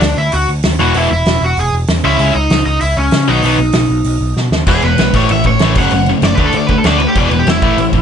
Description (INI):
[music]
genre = punk rock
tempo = 193 BPM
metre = 4/4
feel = straight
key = E major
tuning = A4 = 440 Hz
[part]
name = overdriven semi-hollow guitar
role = melody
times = 0.0-8.0 s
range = C#4 to G#5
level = -16 LUFS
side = equal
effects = none
[part]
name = overdriven picked electric bass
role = bass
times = 0.0-8.0 s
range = E1 to D3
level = -16 LUFS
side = equal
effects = none
[part]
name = loose indie drum kit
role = drums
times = 0.0-8.0 s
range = crash cymbal, hi-hat, kick drum, snare drum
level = -16 LUFS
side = equal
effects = none
[part]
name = sludgy distorted guitar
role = riff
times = 0.8-8.0 s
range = A2 to E4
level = -17 LUFS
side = right 13 dB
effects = overdrive
[part]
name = tight distorted guitar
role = riff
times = 0.8-8.0 s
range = E2 to D4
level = -16 LUFS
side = left 14 dB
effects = distortion
[sound]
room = little or no reverb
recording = nothing above 10.3 kHz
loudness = -10 LUFS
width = side -8 dB against mid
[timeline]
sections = 0.0-4.7 A section; 4.7-8.0 B section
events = drum fill 4.4-4.7; overdriven electric guitar solo 4.7-8.0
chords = 0.0 D; 0.8 E; 2.0 C#m; 3.3 B; 4.7 E; 5.1 A; 5.8 F#m; 6.4 D5; 7.2 E